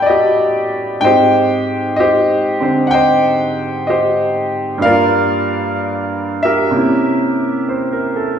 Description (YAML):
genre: solo jazz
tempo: 63 BPM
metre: 4/4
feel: swing 68% on 8ths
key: unclear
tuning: A4 = 440 Hz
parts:
  - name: clear upright piano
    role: solo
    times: 0.0-8.4 s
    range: G2 to G6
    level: -12 LUFS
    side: equal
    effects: none
room: wet recital hall reverb, RT60 1.4 s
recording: recorded in a church or concert hall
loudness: -12 LUFS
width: side -8 dB against mid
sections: 0.0-8.4 A section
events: none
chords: 0.0 A13; 1.0 Abmaj7; 4.8 Gm7; 6.7 C7b9